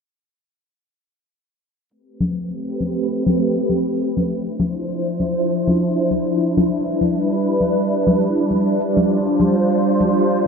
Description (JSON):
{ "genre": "sunset chillout", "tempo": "100 BPM", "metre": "4/4", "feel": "swing 55% on 16ths", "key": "A minor", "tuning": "A4 = 441 Hz", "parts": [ { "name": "soft string machine", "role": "sustained chords", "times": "2.5-10.5 s", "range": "F3 to C5", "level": "-18 LUFS", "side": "right 1 dB", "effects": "phaser, ensemble chorus" }, { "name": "shaker", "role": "drums", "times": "1.9-10.4 s", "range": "none", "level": "-64 LUFS", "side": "left 1 dB", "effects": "none" }, { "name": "congas", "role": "percussion", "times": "2.2-10.1 s", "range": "none", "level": "-22 LUFS", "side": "left 2 dB", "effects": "none" } ], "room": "wet lush hall reverb, RT60 2.1 s", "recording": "bright 1980s-style digital production, low-pass filter", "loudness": "-16 LUFS", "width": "side -5 dB against mid", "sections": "1.9-10.5 A section", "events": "filter sweep on string machine 1.9-10.5; filter sweep 1.9-10.5", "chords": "1.9 Am9; 4.3 Dm9; 6.7 Em7; 8.8 G7sus4" }